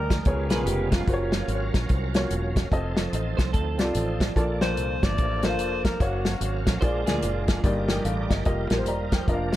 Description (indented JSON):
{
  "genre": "uptempo gospel",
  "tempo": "146 BPM",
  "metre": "4/4",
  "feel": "swing 62% on 8ths",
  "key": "Bb major",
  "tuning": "A4 = 439 Hz",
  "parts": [
    { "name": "growling alto saxophone", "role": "melody", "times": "0.0-0.2, 4.6-6.7 s", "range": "Gb4 to D5", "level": "-33 LUFS", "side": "left 2 dB", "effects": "dub echo" },
    { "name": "warm upright piano", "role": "accompaniment", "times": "0.0-9.6 s", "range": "G2 to Bb5", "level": "-29 LUFS", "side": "left 1 dB", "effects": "dub echo" },
    { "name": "bright tonewheel organ", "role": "sustained chords", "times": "0.0-9.6 s", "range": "F3 to F5", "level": "-34 LUFS", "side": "right 4 dB", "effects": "fast rotary speaker, overdrive, chorus vibrato" },
    { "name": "fingered electric bass", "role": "bass", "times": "0.0-9.6 s", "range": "E1 to D2", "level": "-28 LUFS", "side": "equal", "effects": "none" },
    { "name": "warm soul drum kit", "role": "drums", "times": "0.1-9.6 s", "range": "hi-hat, kick drum, snare drum", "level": "-26 LUFS", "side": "equal", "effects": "dub echo" },
    { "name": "clean electric guitar", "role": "second line", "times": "0.5-4.3, 6.8-7.6 s", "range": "F4 to C5", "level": "-37 LUFS", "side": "right 4 dB", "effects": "analog chorus, dub echo" }
  ],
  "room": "light reverb, small room ambience",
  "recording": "echo-heavy mix",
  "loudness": "-22 LUFS",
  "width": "side -14 dB against mid",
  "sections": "0.0-9.6 A section",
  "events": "none",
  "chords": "0.3 Db7; 1.1 Gbmaj7; 2.7 F7; 4.4 Bbmaj7; 6.0 Gbmaj7; 6.8 Bb7; 7.6 Ebmaj7/G; 8.5 F9sus4"
}